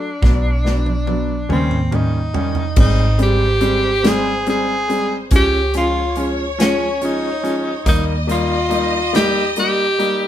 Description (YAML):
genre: six-eight pop ballad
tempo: 47 BPM (dotted quarters)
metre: 6/8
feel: straight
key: unclear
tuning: A4 = 440 Hz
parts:
  - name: breathy tenor saxophone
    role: melody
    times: 0.0-10.3 s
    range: C4 to Ab4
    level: -19 LUFS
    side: equal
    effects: none
  - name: clear grand piano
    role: accompaniment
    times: 0.0-10.2 s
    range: Eb3 to Eb4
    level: -22 LUFS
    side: left 1 dB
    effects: none
  - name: vintage muted fingered electric bass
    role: bass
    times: 0.0-10.3 s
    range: Ab1 to Eb2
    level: -20 LUFS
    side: equal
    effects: none
  - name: modern studio drum kit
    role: drums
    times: 0.2-10.2 s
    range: crash cymbal, hi-hat, kick drum, snare drum, toms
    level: -19 LUFS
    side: right 1 dB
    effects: none
  - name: warm studio violin section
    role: second line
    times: 2.8-10.3 s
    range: C5 to Eb5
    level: -26 LUFS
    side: left 1 dB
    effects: none
room: moderate stone room reverb, RT60 0.9 s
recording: band playing live in one room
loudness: -15 LUFS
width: side -11 dB against mid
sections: 0.0-2.8 A section; 2.8-10.3 B section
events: drum fill 0.2-2.8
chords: 0.2 Bm; 1.5 Eb7; 2.8 Abmaj7; 5.3 Db; 7.9 Eb